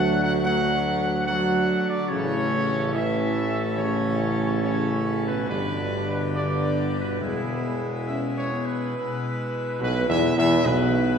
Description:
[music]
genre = classical, ceremonial fanfare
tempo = 70 BPM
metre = 4/4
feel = straight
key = unclear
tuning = A4 = 441 Hz
[part]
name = mellow trumpet section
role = melody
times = 0.0-11.2 s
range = E4 to F#5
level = -28 LUFS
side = equal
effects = none
[part]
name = dark French horn section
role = sustained chords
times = 0.0-11.2 s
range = A3 to G#4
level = -28 LUFS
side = left 2 dB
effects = none
[part]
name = pipe organ, full organ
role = sustained chords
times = 0.0-11.2 s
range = B2 to B4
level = -29 LUFS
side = equal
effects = none
[part]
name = warm trombone section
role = sustained chords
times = 0.0-11.2 s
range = E2 to F#3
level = -30 LUFS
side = right 2 dB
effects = none
[part]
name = clear tuba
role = bass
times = 0.0-11.2 s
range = E1 to E2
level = -27 LUFS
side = right 1 dB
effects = none
[sound]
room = wet scoring stage reverb, RT60 1.9 s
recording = heard from further back in the room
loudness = -22 LUFS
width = side -7 dB against mid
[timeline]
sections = 0.0-9.0 A section; 9.0-11.2 B section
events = none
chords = 0.0 D; 2.1 A; 5.5 G; 7.2 E; 9.0 E/B

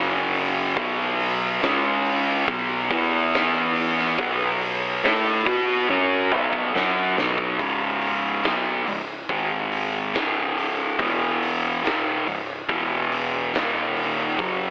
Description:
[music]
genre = stoner and doom metal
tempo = 70 BPM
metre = 4/4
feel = straight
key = C# minor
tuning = A4 = 440 Hz
[part]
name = fuzz guitar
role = riff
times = 0.0-14.7 s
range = C#2 to B4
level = -24 LUFS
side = equal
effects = distortion
[part]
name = overdriven fingered electric bass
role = bass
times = 0.0-14.7 s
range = C#1 to B2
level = -39 LUFS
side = equal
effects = tube saturation
[part]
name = oversized low-tuned drum kit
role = drums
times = 0.3-14.6 s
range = hi-hat, kick drum, snare drum, toms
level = -30 LUFS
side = equal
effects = none
[sound]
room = light reverb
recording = telephone sound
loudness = -23 LUFS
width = mono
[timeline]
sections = 0.0-7.6 A section; 7.6-14.7 B section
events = drum fill 5.9-7.6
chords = 0.0 F#5; 0.8 B5; 1.6 C#5; 2.5 B5; 2.9 E5; 4.2 B5; 7.6 C#5; 9.3 G#5; 10.1 C#5; 11.0 E5; 11.8 C#5; 12.7 E5; 13.5 D#5

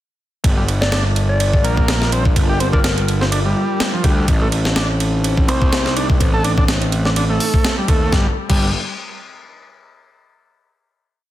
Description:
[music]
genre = breakbeat, breaks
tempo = 125 BPM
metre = 4/4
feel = swing 55% on 16ths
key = G minor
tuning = A4 = 440 Hz
[part]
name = dark analog pad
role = sustained chords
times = 1.1-8.3 s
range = G3 to C5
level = -27 LUFS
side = right 1 dB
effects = chorus, sidechain pumping
[part]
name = fuzz picked electric bass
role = bass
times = 0.4-8.7 s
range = G1 to Eb2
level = -19 LUFS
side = equal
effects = overdrive
[part]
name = breakbeat sampler-style drum kit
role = drums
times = 0.4-8.6 s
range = crash cymbal, hi-hat, kick drum, ride cymbal, snare drum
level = -18 LUFS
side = equal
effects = studio ambience
[part]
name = overdriven combo organ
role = riff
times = 0.6-8.7 s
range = F3 to A4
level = -22 LUFS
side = equal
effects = ping-pong delay
[part]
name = soft struck synth lead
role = melody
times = 0.8-2.9 s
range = Bb4 to D5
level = -24 LUFS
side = left 2 dB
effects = chorus, AM radio sound, ping-pong delay
[sound]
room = light reverb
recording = dense, heavily limited modern master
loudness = -14 LUFS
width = side -14 dB against mid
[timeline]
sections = 0.4-8.1 groove; 8.1-10.0 final chord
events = none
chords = 0.4 Gm7; 4.3 Adim; 8.1 Gm7

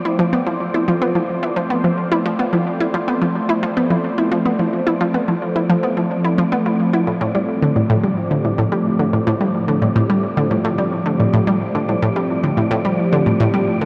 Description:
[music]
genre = ambient, sequencer-driven space music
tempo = 109 BPM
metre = 4/4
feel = straight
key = unclear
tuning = A4 = 440 Hz
[part]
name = phased analog pad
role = sustained chords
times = 0.0-13.9 s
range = F3 to C5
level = -22 LUFS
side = equal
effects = phaser, chorus
[part]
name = wind-like tuned noise texture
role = texture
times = 0.0-13.9 s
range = D5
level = -32 LUFS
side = equal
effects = built-in reverb
[part]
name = analog pluck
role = riff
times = 0.1-13.9 s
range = A2 to E4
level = -20 LUFS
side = equal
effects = chorus, analog delay
[sound]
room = wet huge ambient reverb, RT60 6.9 s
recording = dark, warm production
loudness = -18 LUFS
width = mono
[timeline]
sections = 0.0-13.9 A section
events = fade-in on analog synth pad 0.0-13.9; fade-in on synth texture 0.0-13.9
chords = 0.0 F; 7.1 Am7

